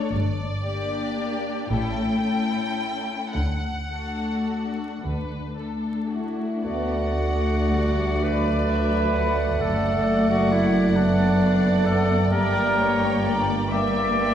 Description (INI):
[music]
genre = classical, slow romantic movement for symphony orchestra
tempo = 35-45 BPM (dotted quarters)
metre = 6/8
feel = rubato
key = D major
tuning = A4 = 444 Hz
[part]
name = warm studio violin section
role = melody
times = 0.0-14.3 s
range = C#5 to G5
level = -32 LUFS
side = left 2 dB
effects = none
[part]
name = warm studio violin section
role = second line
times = 0.0-14.3 s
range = E4 to E5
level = -34 LUFS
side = left 3 dB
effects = none
[part]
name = dark studio viola section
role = accompaniment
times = 0.0-14.3 s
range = F#3 to D4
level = -28 LUFS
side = left 2 dB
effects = none
[part]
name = clear studio cello section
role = bass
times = 0.1-14.3 s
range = D2 to D3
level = -26 LUFS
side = equal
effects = none
[part]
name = warm studio double bass section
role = bass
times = 0.1-14.3 s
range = F#1 to D2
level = -27 LUFS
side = right 1 dB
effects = none
[part]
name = bright clarinet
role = second line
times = 6.1-14.3 s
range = D4 to D5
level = -28 LUFS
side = equal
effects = none
[part]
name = mellow large flute ensemble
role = second line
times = 6.1-14.3 s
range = D5 to D6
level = -30 LUFS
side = left 1 dB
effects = none
[part]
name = warm oboe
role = second line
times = 6.6-14.3 s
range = D5 to E5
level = -31 LUFS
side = right 5 dB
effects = none
[part]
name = warm bassoon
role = accompaniment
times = 6.6-14.3 s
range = G3 to Bb3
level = -28 LUFS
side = right 2 dB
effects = none
[sound]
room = wet scoring stage reverb, RT60 1.6 s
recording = heard from further back in the room, vinyl crackle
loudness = -21 LUFS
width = side -9 dB against mid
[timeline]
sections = 0.0-6.6 A section; 6.6-14.3 A section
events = none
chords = 0.1 Gm; 1.7 A7; 3.4 D; 9.6 D/F#; 12.3 Gm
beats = | 0.14 1.72 | 3.35 5.02 | 6.64 8.23 | 9.62 10.98 | 12.33 13.71